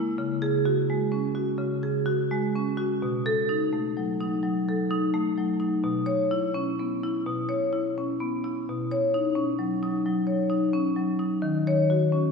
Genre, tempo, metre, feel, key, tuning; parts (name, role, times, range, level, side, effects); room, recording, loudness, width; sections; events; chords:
classical, contemporary piece for solo marimba; 85 BPM; 4/4; rubato; C# minor; A4 = 440 Hz
marimba with medium hard mallets; solo; 0.0-12.3 s; B2 to C#5; -24 LUFS; left 1 dB
wet concert hall reverb, RT60 1.9 s; heard from further back in the room; -24 LUFS; side -5 dB against mid
0.0-12.3 A section
0.2 C#sus4; 3.0 B7; 5.8 C#m7/B; 8.6 Badd9; 11.4 D#m7